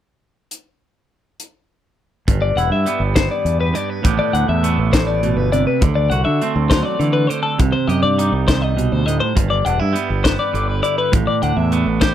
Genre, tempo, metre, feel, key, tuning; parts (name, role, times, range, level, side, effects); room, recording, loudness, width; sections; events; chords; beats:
math rock and midwest emo; 68 BPM (dotted quarters); 6/8; straight; G major; A4 = 440 Hz
crisp fusion drum kit; drums; 0.5-12.1 s; hi-hat, kick drum, snare drum; -19 LUFS; equal
twangy electric guitar; accompaniment; 2.3-12.1 s; G2 to B4; -21 LUFS; right 8 dB
growling fingered electric bass; bass; 2.3-12.1 s; E1 to D3; -19 LUFS; equal; overdrive
twelve-string electric guitar; arpeggios; 2.4-12.1 s; A4 to F#5; -20 LUFS; left 6 dB
small room ambience; -15 LUFS; side -10 dB against mid
0.5-2.3 A section; 2.3-12.1 B section
0.5 N.C.; 2.3 G6; 4.0 Am11; 5.8 D7; 7.6 Cmadd9; 9.4 G6; 11.1 Am11
| 0.50 1.39 | 2.27 3.16 | 4.05 4.93 | 5.82 6.70 | 7.59 8.47 | 9.36 10.24 | 11.12 12.01